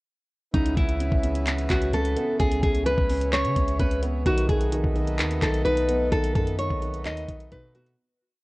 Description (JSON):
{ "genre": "hip hop, trap", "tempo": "129 BPM", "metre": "4/4", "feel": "half-time", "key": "C# minor", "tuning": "A4 = 440 Hz", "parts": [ { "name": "nylon-string guitar", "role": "melody", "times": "0.5-8.0 s", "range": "D#4 to D#5", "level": "-26 LUFS", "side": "equal", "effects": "low-pass filter" }, { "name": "dark concert grand piano", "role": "accompaniment", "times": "0.5-8.0 s", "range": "C#3 to D#4", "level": "-30 LUFS", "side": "right 2 dB", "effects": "low-pass filter" }, { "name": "pedal harmonium", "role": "sustained chords", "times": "0.5-7.9 s", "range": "C#3 to E4", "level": "-35 LUFS", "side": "equal", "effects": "none" }, { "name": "long sustained 808-style bass", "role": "bass", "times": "0.5-8.0 s", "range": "B1 to C#3", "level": "-28 LUFS", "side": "equal", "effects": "none" }, { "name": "trap drum kit", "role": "drums", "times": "0.5-8.0 s", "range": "handclaps, hi-hat, kick drum", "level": "-26 LUFS", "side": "equal", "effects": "vintage 12-bit sampler grit" } ], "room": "small room ambience", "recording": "worn, warbling old tape, cassette tape, warbly pitch drift", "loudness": "-22 LUFS", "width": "side -21 dB against mid", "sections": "0.5-8.0 hook", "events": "fade-out 6.1-8.0", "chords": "0.5 C#m7; 4.3 B7" }